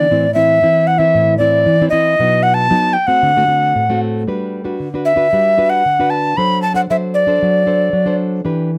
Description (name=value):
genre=samba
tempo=115 BPM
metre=4/4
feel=straight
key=G major from 4.3 s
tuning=A4 = 439 Hz
part: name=mellow tenor recorder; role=melody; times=0.0-8.2 s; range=D5 to B5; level=-15 LUFS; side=equal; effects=none
part: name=nylon-string guitar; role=accompaniment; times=0.0-8.8 s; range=A2 to C5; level=-20 LUFS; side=equal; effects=none
room=light reverb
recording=close, detailed microphones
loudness=-14 LUFS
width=mono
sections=0.0-4.3 A section; 4.3-8.8 B section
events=none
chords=0.1 Am; 2.2 B; 3.2 D7; 4.3 Gmaj7; 6.4 D7/F#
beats=| 0.11 0.63 1.15 1.67 | 2.19 2.71 3.23 3.75 | 4.28 4.80 5.32 5.84 | 6.37 6.89 7.41 7.94 | 8.46